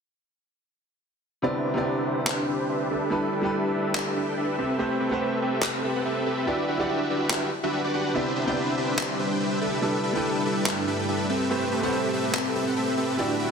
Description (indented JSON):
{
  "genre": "future bass",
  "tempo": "143 BPM",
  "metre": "4/4",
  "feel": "swing 55% on 16ths, half-time",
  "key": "unclear",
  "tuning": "A4 = 440 Hz",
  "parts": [
    { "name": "clear grand piano", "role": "accompaniment", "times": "1.4-13.5 s", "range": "C3 to D5", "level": "-30 LUFS", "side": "right 1 dB", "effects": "vintage 12-bit sampler grit, ping-pong delay" },
    { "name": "dense compressed supersaw", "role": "riff", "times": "1.4-13.5 s", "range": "C4 to G5", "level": "-25 LUFS", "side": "equal", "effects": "low-pass filter, ping-pong delay" },
    { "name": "electronic handclaps", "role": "drums", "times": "2.3-12.4 s", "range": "none", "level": "-29 LUFS", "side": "left 1 dB", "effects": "overdrive" },
    { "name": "ethereal airy pad", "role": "sustained chords", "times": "8.8-13.5 s", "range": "G2 to B5", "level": "-31 LUFS", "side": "equal", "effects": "ensemble chorus, built-in reverb" }
  ],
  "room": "light reverb",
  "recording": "dense, heavily limited modern master",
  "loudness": "-23 LUFS",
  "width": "side -6 dB against mid",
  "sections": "1.4-13.5 A section",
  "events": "filter sweep on supersaw synth 1.4-13.5",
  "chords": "1.4 Cmaj9; 2.9 G69; 4.6 Am9; 6.5 Em9; 8.1 Cmaj9; 9.6 G69; 11.3 Am9"
}